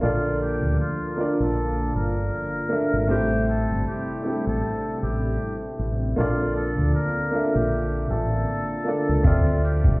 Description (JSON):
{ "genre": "lo-fi hip hop", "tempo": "78 BPM", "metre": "4/4", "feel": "swing 56% on 16ths", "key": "unclear", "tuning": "A4 = 439 Hz", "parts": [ { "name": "trumpet with metal mute", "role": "melody", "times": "0.0-10.0 s", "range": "F4 to Bb4", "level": "-31 LUFS", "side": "left 1 dB", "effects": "none" }, { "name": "warm upright piano", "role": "accompaniment", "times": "0.0-10.0 s", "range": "A3 to E5", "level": "-25 LUFS", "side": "equal", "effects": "none" }, { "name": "warm analog pad", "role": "sustained chords", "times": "0.0-10.0 s", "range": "C3 to E5", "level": "-32 LUFS", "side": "equal", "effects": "chorus" }, { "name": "deep dub fingered electric bass", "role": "bass", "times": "0.0-10.0 s", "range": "G1 to D2", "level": "-24 LUFS", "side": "equal", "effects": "none" }, { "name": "trip hop sampler-style drum kit", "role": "drums", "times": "9.2-10.0 s", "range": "hi-hat, kick drum", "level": "-18 LUFS", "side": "equal", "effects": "vintage 12-bit sampler grit" }, { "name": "egg shaker", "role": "percussion", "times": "9.2-9.8 s", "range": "none", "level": "-78 LUFS", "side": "left 7 dB", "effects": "none" } ], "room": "light reverb, small room ambience", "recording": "heard muffled through a wall, stone room reverb, vinyl crackle, EQ", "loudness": "-21 LUFS", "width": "side -24 dB against mid", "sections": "0.0-10.0 A section", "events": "none", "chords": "0.0 Bbmaj7; 3.1 Am7; 6.2 Bbmaj7; 9.2 Dm9" }